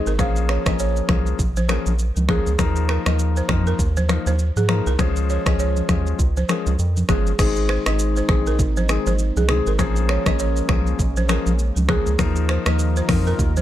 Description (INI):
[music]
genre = afrobeats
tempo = 100 BPM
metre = 4/4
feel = swing 58% on 16ths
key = Ab major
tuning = A4 = 441 Hz
[part]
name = marimba with soft mallets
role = melody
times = 0.0-1.1 s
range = Eb5 to F5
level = -34 LUFS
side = equal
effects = digital delay
[part]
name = warm grand piano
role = accompaniment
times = 0.0-13.4 s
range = Eb3 to Bb4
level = -24 LUFS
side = left 8 dB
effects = none
[part]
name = balafon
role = riff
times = 0.1-13.6 s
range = Ab4 to Eb5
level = -28 LUFS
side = right 7 dB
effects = digital delay
[part]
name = round analog bass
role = bass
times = 0.1-13.6 s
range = G1 to Ab2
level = -21 LUFS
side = equal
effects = none
[part]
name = afro-pop drum kit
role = drums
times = 0.1-13.6 s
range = crash cymbal, finger snaps, hi-hat, kick drum, rim click, shaker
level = -23 LUFS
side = right 1 dB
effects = none
[part]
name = congas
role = percussion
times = 0.2-13.6 s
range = none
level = -29 LUFS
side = right 2 dB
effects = none
[part]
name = warm analog pad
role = sustained chords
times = 7.4-13.6 s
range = Eb3 to Bb4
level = -32 LUFS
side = right 2 dB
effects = chorus
[sound]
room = small room ambience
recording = dark, warm production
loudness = -17 LUFS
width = side -12 dB against mid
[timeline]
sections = 0.0-7.4 A section; 7.4-13.6 B section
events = none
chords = 0.2 Bbm7; 2.6 Ebsus2; 5.0 Db; 7.4 Ab; 9.8 Bbm7; 12.2 Ebsus2